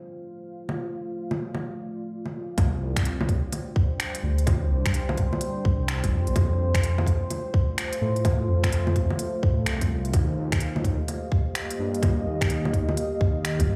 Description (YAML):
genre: future garage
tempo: 127 BPM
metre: 4/4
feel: swing 64% on 16ths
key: C dorian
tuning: A4 = 439 Hz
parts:
  - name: deep dark ambient pad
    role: sustained chords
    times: 0.0-13.8 s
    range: G3 to G5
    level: -34 LUFS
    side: equal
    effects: chorus, built-in reverb, sidechain pumping
  - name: organic electronic drum kit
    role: drums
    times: 0.7-13.7 s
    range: bongos, finger snaps, hi-hat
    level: -32 LUFS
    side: equal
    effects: overdrive
  - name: dark detuned saw bass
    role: bass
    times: 2.6-13.8 s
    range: G1 to A2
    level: -28 LUFS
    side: equal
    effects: sidechain pumping
  - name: electronic kick drum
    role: drums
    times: 2.6-13.7 s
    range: none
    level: -26 LUFS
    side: equal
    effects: overdrive
room: moderate digital room reverb, RT60 1.2 s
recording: played on a big sound system in a bare room, large studio reverb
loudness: -25 LUFS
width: mono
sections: 0.0-2.6 A section; 2.6-13.8 B section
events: none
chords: 0.0 F; 2.6 Csus2; 6.4 F; 10.1 Ebadd9